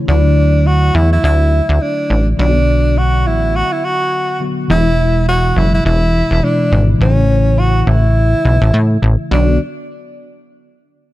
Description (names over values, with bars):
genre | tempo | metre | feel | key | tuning
afrobeats | 104 BPM | 4/4 | swing 58% on 16ths | B dorian | A4 = 439 Hz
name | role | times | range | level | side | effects
bell-like tine electric piano | accompaniment | 0.0-9.6 s | B2 to F#4 | -19 LUFS | left 2 dB | phaser
breathy tenor saxophone | melody | 0.1-9.6 s | C#4 to F#4 | -17 LUFS | equal | none
plucky analog bass | bass | 0.1-9.6 s | E1 to A2 | -12 LUFS | equal | none
room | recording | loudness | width
small room ambience | dark, warm production | -11 LUFS | side -16 dB against mid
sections
0.1-9.3 A section; 9.3-11.1 B section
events
none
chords
0.1 Dadd9; 2.4 Bm; 4.7 E; 7.0 A; 9.3 Bm